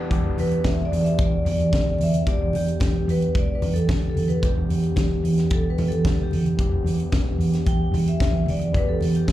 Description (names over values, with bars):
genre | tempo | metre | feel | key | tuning
disco | 111 BPM | 4/4 | straight | E minor | A4 = 440 Hz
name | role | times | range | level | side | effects
overdriven tine electric piano | accompaniment | 0.0-9.3 s | E3 to G4 | -28 LUFS | left 1 dB | slapback echo
mellow French horn section | sustained chords | 0.1-9.3 s | E3 to G4 | -37 LUFS | left 1 dB | none
hollow-body short-scale fingered electric bass | bass | 0.1-9.3 s | E1 to E2 | -22 LUFS | right 1 dB | none
tight funk drum kit | drums | 0.1-9.3 s | hi-hat, kick drum, snare drum | -25 LUFS | equal | none
vibraphone with medium hard mallets | melody | 0.4-9.3 s | G4 to G5 | -28 LUFS | left 1 dB | slapback echo
congas | percussion | 0.4-9.3 s | none | -32 LUFS | left 2 dB | none
room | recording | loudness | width
small room ambience | live gig heard through the venue's PA, club reverb | -19 LUFS | side -14 dB against mid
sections
0.1-9.3 A section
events
vibraphone solo 0.1-9.3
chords
0.1 Em7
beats
| 0.12 0.66 1.19 1.73 | 2.27 2.81 3.35 3.89 | 4.43 4.97 5.51 6.05 | 6.59 7.13 7.67 8.21 | 8.74 9.28